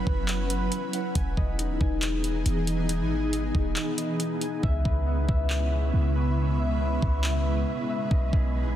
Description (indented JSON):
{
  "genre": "hip hop, atmospheric cloud-rap",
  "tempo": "138 BPM",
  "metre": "4/4",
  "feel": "half-time",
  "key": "C# minor",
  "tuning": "A4 = 440 Hz",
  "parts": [
    { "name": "ethereal airy pad", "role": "sustained chords", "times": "0.0-8.8 s", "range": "C#3 to B4", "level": "-30 LUFS", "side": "right 1 dB", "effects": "ensemble chorus, built-in reverb, tremolo, sidechain pumping" },
    { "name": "concert harp", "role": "arpeggios", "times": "0.0-8.8 s", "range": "G#3 to G#5", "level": "-33 LUFS", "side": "left 5 dB", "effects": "digital delay" },
    { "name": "clean 808-style bass", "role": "bass", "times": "0.0-8.8 s", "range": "D#1 to C#2", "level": "-26 LUFS", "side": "equal", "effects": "none" },
    { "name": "smooth R&B drum kit", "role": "drums", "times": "0.1-8.4 s", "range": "handclaps, hi-hat, kick drum", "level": "-29 LUFS", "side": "equal", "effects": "none" },
    { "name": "wind-like tuned noise texture", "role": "texture", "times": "5.4-8.8 s", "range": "C#4 to G#5", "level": "-39 LUFS", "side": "right 2 dB", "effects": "built-in reverb" }
  ],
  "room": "light reverb",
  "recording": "dense, heavily limited modern master",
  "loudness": "-24 LUFS",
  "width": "side -11 dB against mid",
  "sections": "0.0-8.8 A section",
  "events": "kick muted 3.8-4.6; hi-hats muted 4.6-8.8",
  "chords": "0.0 F#7sus4; 1.2 Emaj7; 4.6 C#m7; 8.1 B6"
}